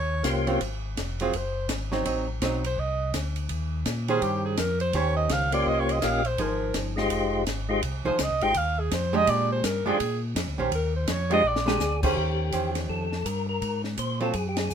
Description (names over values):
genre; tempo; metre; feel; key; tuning
soul jazz organ trio; 166 BPM; 4/4; swing 63% on 8ths; Eb mixolydian; A4 = 441 Hz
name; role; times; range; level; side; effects
breathy alto saxophone; melody; 0.0-12.0 s; G4 to G5; -27 LUFS; right 2 dB; none
mellow tonewheel organ; bass; 0.0-14.7 s; F1 to Bb2; -29 LUFS; equal; chorus vibrato, slow rotary speaker
percussive tonewheel organ; melody; 0.2-0.6, 5.5-14.7 s; Ab3 to Eb5; -28 LUFS; left 3 dB; slow rotary speaker
compact cocktail drum kit; drums; 0.2-14.7 s; crash cymbal, hi-hat, kick drum, ride cymbal, snare drum; -33 LUFS; left 1 dB; none
archtop guitar, miked and amplified; accompaniment; 0.5-14.3 s; Eb3 to C5; -28 LUFS; right 4 dB; none
room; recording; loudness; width
moderate studio reverb, RT60 0.7 s; minimal, uncompressed stereo recording; -24 LUFS; side -8 dB against mid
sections
0.0-12.2 A section; 12.2-14.7 B section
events
alto saxophone solo 0.0-12.2; drum fill 11.4-11.8; band accent 14.5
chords
0.0 Eb13; 0.6 Ab6; 2.1 Adim7; 3.5 Eb13; 6.4 Fm7; 9.3 Bb13; 10.7 Eb69; 11.4 Bb13; 12.2 Eb13; 13.6 Ab9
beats
0.24 | 0.61 0.97 1.33 1.69 | 2.05 2.41 2.77 3.13 | 3.50 3.86 4.22 4.58 | 4.94 5.30 5.66 6.02 | 6.38 6.74 7.11 7.47 | 7.83 8.19 8.55 8.91 | 9.27 9.63 9.99 10.35 | 10.71 11.08 11.44 11.80 | 12.16 12.52 12.89 13.25 | 13.61 13.98 14.34 14.70